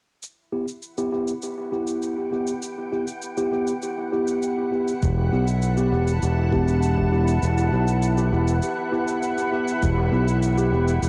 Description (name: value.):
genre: ambient dub.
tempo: 100 BPM.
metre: 4/4.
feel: straight.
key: E minor.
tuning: A4 = 442 Hz.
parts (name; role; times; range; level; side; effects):
soft additive organ-like pad; sustained chords; 1.4-11.1 s; E4 to A5; -31 LUFS; equal; ensemble chorus, built-in reverb, cassette tape.
cabasa; drums; 0.2-11.1 s; none; -42 LUFS; equal; overdrive, studio reverb, cassette tape, dub echo.
mellow tine electric piano; stabs; 0.5-10.9 s; B3 to G4; -27 LUFS; equal; low-pass filter, cassette tape, dub echo.
overdriven fingered electric bass; bass; 5.0-11.1 s; E1 to B1; -23 LUFS; equal; none.
electronic kick drum; drums; 5.0-9.9 s; none; -30 LUFS; equal; overdrive, studio reverb, cassette tape.
room: wet small room reverb, RT60 0.5 s.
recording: home recording on cassette.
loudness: -23 LUFS.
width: mono.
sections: 0.2-9.8 A section; 9.8-11.1 B section.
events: fade-in on ambient pad 0.2-9.8; kick drops out 7.4-9.8.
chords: 0.2 Em.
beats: | 0.23 0.83 1.43 2.03 | 2.63 3.23 3.83 4.43 | 5.03 5.63 6.23 6.83 | 7.43 8.03 8.63 9.23 | 9.83 10.43 11.03.